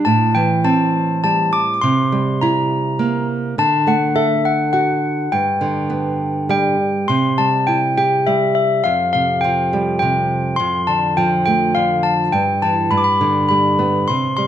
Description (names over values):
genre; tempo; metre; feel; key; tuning
children's music, lullaby; 103 BPM; 3/4; straight; C major; A4 = 445 Hz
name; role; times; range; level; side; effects
handbells; melody; 0.0-14.5 s; E5 to D6; -17 LUFS; left 3 dB; none
nylon-string guitar; accompaniment; 0.0-14.5 s; F2 to A4; -18 LUFS; right 3 dB; none
room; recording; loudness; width
moderate recital hall reverb, RT60 1.4 s; dark, warm production; -14 LUFS; side -10 dB against mid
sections
0.0-7.1 A section; 7.1-14.5 B section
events
none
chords
0.1 Am7; 1.8 C7; 3.6 D; 5.3 G; 7.1 C; 8.9 Fsus2; 10.6 Dm/F; 12.3 Emadd11/G; 12.9 G